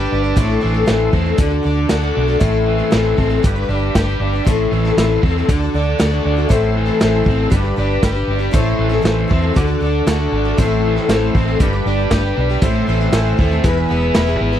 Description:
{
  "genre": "folk rock and heartland rock",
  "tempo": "118 BPM",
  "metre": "4/4",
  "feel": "straight",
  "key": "A minor",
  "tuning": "A4 = 439 Hz",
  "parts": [
    { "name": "overdriven harmonica", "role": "second line", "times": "0.0-1.1 s", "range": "D4", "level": "-25 LUFS", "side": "right 5 dB", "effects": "none" },
    { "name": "picked plugged-in twelve-string acoustic guitar", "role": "accompaniment", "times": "0.0-14.6 s", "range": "A2 to C5", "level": "-21 LUFS", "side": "left 8 dB", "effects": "none" },
    { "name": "tonewheel organ", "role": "sustained chords", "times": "0.0-14.6 s", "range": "G4 to C6", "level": "-28 LUFS", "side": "right 1 dB", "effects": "slow rotary speaker, chorus vibrato" },
    { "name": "overdriven electric guitar", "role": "riff", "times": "0.0-14.6 s", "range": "E2 to G4", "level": "-20 LUFS", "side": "right 3 dB", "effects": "none" },
    { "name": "hollow-body short-scale fingered electric bass", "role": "bass", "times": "0.0-14.6 s", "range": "E1 to E2", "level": "-19 LUFS", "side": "equal", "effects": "none" },
    { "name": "vintage drum kit", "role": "drums", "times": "0.4-14.3 s", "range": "hi-hat, kick drum, snare drum", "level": "-17 LUFS", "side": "equal", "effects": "none" },
    { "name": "clear grand piano", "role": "accompaniment", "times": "6.5-14.5 s", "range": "D4 to A5", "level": "-27 LUFS", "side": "right 2 dB", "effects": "none" }
  ],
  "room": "little or no reverb",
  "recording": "dry, close 1970s-style studio recording",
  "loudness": "-14 LUFS",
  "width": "side -10 dB against mid",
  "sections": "0.0-14.6 A section",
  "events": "grand piano fill 9.1-10.6",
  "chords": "0.4 Am; 1.4 D; 2.4 Am; 3.4 G; 4.5 Am; 5.5 D; 6.5 Am; 7.5 G; 8.5 Am; 9.6 D; 10.6 Am; 11.6 G; 12.6 Am; 13.7 E"
}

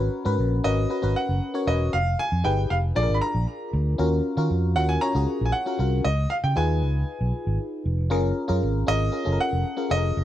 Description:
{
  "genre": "polished 1980s jazz-funk pop",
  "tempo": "117 BPM",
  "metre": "4/4",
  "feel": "straight",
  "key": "F# major",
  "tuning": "A4 = 440 Hz",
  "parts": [
    { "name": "FM electric piano", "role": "accompaniment", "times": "0.0-10.2 s", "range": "C#4 to C#5", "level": "-27 LUFS", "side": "left 2 dB", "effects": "wide subtle chorus" },
    { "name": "fingered electric bass", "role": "bass", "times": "0.0-10.2 s", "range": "E1 to D#3", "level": "-23 LUFS", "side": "equal", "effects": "none" },
    { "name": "clear concert grand piano", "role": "melody", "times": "0.6-10.2 s", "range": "D5 to B5", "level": "-27 LUFS", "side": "right 1 dB", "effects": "none" }
  ],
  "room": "little or no reverb",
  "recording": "dry, close 1970s-style studio recording",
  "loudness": "-22 LUFS",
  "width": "side -12 dB against mid",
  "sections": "0.0-10.2 A section",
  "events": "none",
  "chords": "0.0 G#m11; 1.9 Fm7b5; 3.0 A#7; 4.0 D#m9; 6.0 C#9; 8.1 F#maj9"
}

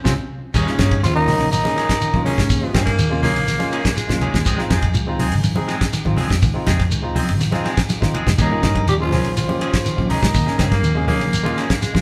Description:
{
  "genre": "afrobeat",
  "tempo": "122 BPM",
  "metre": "4/4",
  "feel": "straight",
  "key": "Eb mixolydian",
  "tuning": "A4 = 440 Hz",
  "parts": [
    { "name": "barky tine electric piano", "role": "accompaniment", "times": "0.0-12.0 s", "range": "Ab3 to Ab4", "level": "-30 LUFS", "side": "equal", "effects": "overdrive" },
    { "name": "semi-hollow electric guitar", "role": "arpeggios", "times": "0.0-12.0 s", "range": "C3 to G3", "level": "-30 LUFS", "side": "equal", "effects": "none" },
    { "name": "electric guitar at the edge of break-up", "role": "stabs", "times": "0.0-11.7 s", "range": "Eb3 to Ab4", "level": "-30 LUFS", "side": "equal", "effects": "none" },
    { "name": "fingered electric bass", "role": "bass", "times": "0.1-12.0 s", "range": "Ab1 to Ab2", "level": "-24 LUFS", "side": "equal", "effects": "none" },
    { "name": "damped 70s drum kit", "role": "drums", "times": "0.1-12.0 s", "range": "crash cymbal, hi-hat, kick drum, ride cymbal, snare drum", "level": "-24 LUFS", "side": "equal", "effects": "none" },
    { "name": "congas", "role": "percussion", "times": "0.1-12.0 s", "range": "none", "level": "-28 LUFS", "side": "equal", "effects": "none" },
    { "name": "shekere", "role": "percussion", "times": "0.1-11.9 s", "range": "none", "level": "-29 LUFS", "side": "equal", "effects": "none" },
    { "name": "growling tenor saxophone", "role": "melody", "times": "0.5-3.0, 8.4-10.8 s", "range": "Db4 to G4", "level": "-26 LUFS", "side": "equal", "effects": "none" },
    { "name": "trombone with bucket mute", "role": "second line", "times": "0.6-2.9, 8.4-10.8 s", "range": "Db3 to G3", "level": "-29 LUFS", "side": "equal", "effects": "none" },
    { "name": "raspy baritone saxophone", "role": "second line", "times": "2.7-4.9, 10.6-12.0 s", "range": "Ab3 to C4", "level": "-26 LUFS", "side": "equal", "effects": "none" }
  ],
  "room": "wet large studio reverb, RT60 1.3 s",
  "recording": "band playing live in one room",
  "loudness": "-18 LUFS",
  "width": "mono",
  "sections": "0.5-12.0 A section",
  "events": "drum fill 0.0-0.5, 7.9-8.4; band accent 0.0-0.5",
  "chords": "0.0 Dbmaj7; 0.5 Eb7sus4; 4.5 Dbmaj7; 8.4 Eb7sus4"
}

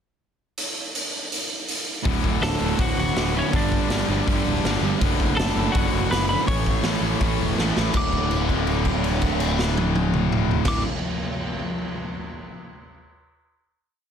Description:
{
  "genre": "punk rock",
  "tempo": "163 BPM",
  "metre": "4/4",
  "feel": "straight",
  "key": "D major",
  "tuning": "A4 = 441 Hz",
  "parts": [
    { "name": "raw garage drum kit", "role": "drums", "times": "0.6-10.7 s", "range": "crash cymbal, hi-hat, kick drum, snare drum, toms", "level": "-25 LUFS", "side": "equal", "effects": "none" },
    { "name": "distorted electric guitar", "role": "riff", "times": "2.0-10.8 s", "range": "D2 to A3", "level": "-30 LUFS", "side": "equal", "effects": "distortion" },
    { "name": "tight distorted guitar", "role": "riff", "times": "2.0-10.8 s", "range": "D2 to A3", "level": "-28 LUFS", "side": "left 14 dB", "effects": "distortion" },
    { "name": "overdriven semi-hollow guitar", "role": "riff", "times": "2.1-10.8 s", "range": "D2 to A3", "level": "-28 LUFS", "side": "right 14 dB", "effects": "none" },
    { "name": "fuzz picked electric bass", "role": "bass", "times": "2.1-10.8 s", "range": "D1 to A1", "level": "-26 LUFS", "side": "equal", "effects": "overdrive" },
    { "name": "lightly driven lead guitar", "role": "melody", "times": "2.4-10.8 s", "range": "C#4 to D6", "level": "-28 LUFS", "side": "left 1 dB", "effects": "none" }
  ],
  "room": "light reverb",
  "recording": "dense, heavily limited modern master",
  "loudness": "-20 LUFS",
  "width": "side -8 dB against mid",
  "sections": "0.6-2.1 pickup bar; 2.1-7.9 riff; 7.9-10.9 final chord",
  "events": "drum fill 7.6-7.9; held note 7.9-10.7",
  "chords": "0.6 N.C.; 2.1 D; 3.5 G5; 5.0 D/F#; 6.5 A; 7.9 D5"
}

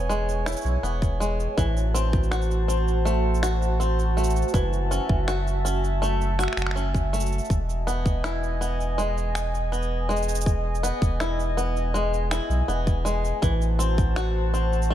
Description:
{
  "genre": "folktronica",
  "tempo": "81 BPM",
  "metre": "4/4",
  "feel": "straight",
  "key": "E major",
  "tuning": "A4 = 440 Hz",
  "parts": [
    { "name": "warbly tape-like pad", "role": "sustained chords", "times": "0.0-14.9 s", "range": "F#4 to A5", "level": "-30 LUFS", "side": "right 1 dB", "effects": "chorus, built-in reverb" },
    { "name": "bluegrass banjo", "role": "arpeggios", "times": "0.0-14.9 s", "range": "E3 to F#4", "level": "-29 LUFS", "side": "left 1 dB", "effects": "tape echo" },
    { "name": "warm sub bass", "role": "bass", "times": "0.0-14.9 s", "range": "E1 to B1", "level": "-25 LUFS", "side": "equal", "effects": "none" },
    { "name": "electronic shaker and finger snaps", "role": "drums", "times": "0.1-14.9 s", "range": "none", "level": "-34 LUFS", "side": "right 2 dB", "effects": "none" },
    { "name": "electronic kick drum", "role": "drums", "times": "1.0-14.1 s", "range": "none", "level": "-23 LUFS", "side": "equal", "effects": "none" }
  ],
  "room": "light reverb",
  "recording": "dark, warm production",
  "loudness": "-22 LUFS",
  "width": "side -11 dB against mid",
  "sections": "0.0-14.9 A section",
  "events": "none",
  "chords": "0.0 E; 1.6 Am6; 4.5 F#m7; 7.5 Emaj7; 13.4 Am6"
}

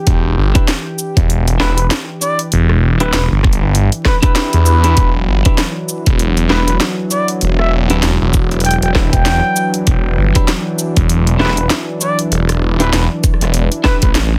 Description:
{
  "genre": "glitch hop",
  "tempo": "98 BPM",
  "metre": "4/4",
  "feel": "swing 58% on 16ths",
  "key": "E minor",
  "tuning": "A4 = 440 Hz",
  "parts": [
    { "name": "warm analog pad", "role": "sustained chords", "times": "0.0-14.4 s", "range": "E3 to G4", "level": "-24 LUFS", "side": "equal", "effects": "chorus, sidechain pumping" },
    { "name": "phased detuned saw bass", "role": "bass", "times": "0.1-14.4 s", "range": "E1 to E2", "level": "-16 LUFS", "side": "equal", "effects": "phaser" },
    { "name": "drum and bass drum kit", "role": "drums", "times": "0.1-14.3 s", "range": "hi-hat, rim click, shaker, snare drum", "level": "-21 LUFS", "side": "equal", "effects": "overdrive" },
    { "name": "electronic kick drum", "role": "drums", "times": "0.1-14.1 s", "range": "none", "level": "-15 LUFS", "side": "equal", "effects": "overdrive" },
    { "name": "clean electric guitar", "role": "stabs", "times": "0.5-14.0 s", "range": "D4 to B4", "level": "-22 LUFS", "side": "equal", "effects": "sidechain pumping, delay" },
    { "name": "mellow trumpet", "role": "melody", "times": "1.6-14.1 s", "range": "B4 to G5", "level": "-23 LUFS", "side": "equal", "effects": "delay" }
  ],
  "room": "light reverb",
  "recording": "dense, heavily limited modern master, vinyl crackle",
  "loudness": "-14 LUFS",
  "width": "mono",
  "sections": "0.0-14.4 A section",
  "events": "none",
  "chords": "0.0 Em7"
}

